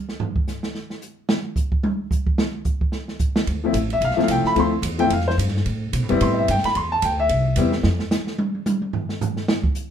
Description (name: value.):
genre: jazz, small-group swing and bop.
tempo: 220 BPM.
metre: 4/4.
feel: swing 58% on 8ths.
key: A minor.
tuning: A4 = 440 Hz.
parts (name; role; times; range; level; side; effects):
open jazz drum kit; drums; 0.1-9.8 s; hi-hat, kick drum, ride cymbal, snare drum, toms; -23 LUFS; right 2 dB; none.
upright bass; bass; 3.5-8.0 s; A1 to B2; -23 LUFS; equal; none.
warm baby grand piano; accompaniment; 3.6-7.7 s; F3 to C6; -19 LUFS; left 2 dB; none.
room: moderate club reverb, RT60 0.7 s.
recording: minimal, uncompressed stereo recording.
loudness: -19 LUFS.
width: side -9 dB against mid.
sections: 0.0-9.9 A section.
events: drum solo 0.0-3.5, 7.8-9.9.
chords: 0.0 N.C.; 3.5 Dm7; 5.7 Am9; 7.8 N.C..